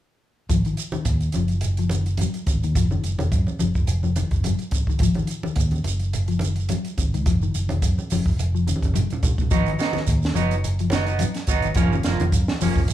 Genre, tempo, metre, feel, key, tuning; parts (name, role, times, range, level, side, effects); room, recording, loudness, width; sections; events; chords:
afrobeat; 106 BPM; 4/4; swing 54% on 16ths; G# dorian; A4 = 440 Hz
semi-hollow electric guitar; arpeggios; 0.5-12.8 s; A#2 to F#3; -27 LUFS; left 6 dB; spring reverb
fingered electric bass; bass; 0.5-12.9 s; E#1 to F#2; -24 LUFS; equal
compact cocktail drum kit; drums; 0.5-12.9 s; hi-hat, kick drum, snare drum; -24 LUFS; equal
shekere; percussion; 0.5-12.9 s; -32 LUFS; right 5 dB
congas; percussion; 0.9-12.8 s; -30 LUFS; right 2 dB
electric guitar at the edge of break-up; stabs; 9.5-12.8 s; E#3 to D#4; -25 LUFS; right 6 dB
light reverb; band playing live in one room; -20 LUFS; side -13 dB against mid
0.5-12.9 A section
drum fill 8.7-9.5
0.5 G#5; 2.8 D#madd9/E#; 5.0 G#5; 7.3 F#maj7(no3); 9.5 G#m7; 11.8 F#maj7